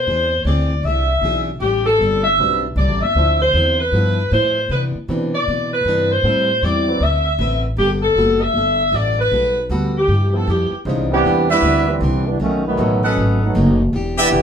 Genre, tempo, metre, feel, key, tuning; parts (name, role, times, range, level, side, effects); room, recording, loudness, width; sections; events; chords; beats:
jazz, big band swing; 156 BPM; 4/4; swing 64% on 8ths; G major, C major from 10.9 s; A4 = 440 Hz
clear saxophone section; melody; 0.0-10.8 s; G4 to E5; -17 LUFS; left 1 dB
upright bass; bass; 0.0-14.4 s; E1 to C3; -20 LUFS; equal
picked plugged-in steel-string acoustic guitar; accompaniment; 0.1-14.4 s; G2 to B4; -26 LUFS; left 2 dB
warm grand piano; accompaniment; 2.4-13.0 s; E3 to C5; -25 LUFS; right 1 dB
clear trombone section; second line; 11.1-14.4 s; D3 to G4; -18 LUFS; right 2 dB
clear trumpet section; stabs; 11.5-14.3 s; G4 to F#5; -18 LUFS; right 2 dB
moderate studio reverb, RT60 0.6 s; band playing live in one room, lossy compression artefacts; -15 LUFS; side -7 dB against mid
0.0-10.9 A section; 10.9-14.4 B section
trombone section solo 10.9-14.4
0.1 E7b13; 1.6 Am11; 3.2 Dm9; 3.9 G13; 4.7 Cmaj9; 6.2 Am7; 7.0 D13; 7.8 Gmaj9; 10.1 G6; 10.9 Cmaj9; 12.4 B7
| 0.08 0.47 0.85 1.24 | 1.62 2.01 2.39 2.78 | 3.16 3.55 3.93 4.32 | 4.70 5.09 5.47 5.86 | 6.24 6.63 7.01 7.40 | 7.78 8.17 8.55 8.94 | 9.32 9.71 10.09 10.48 | 10.86 11.25 11.63 12.02 | 12.40 12.79 13.17 13.55 | 13.94 14.32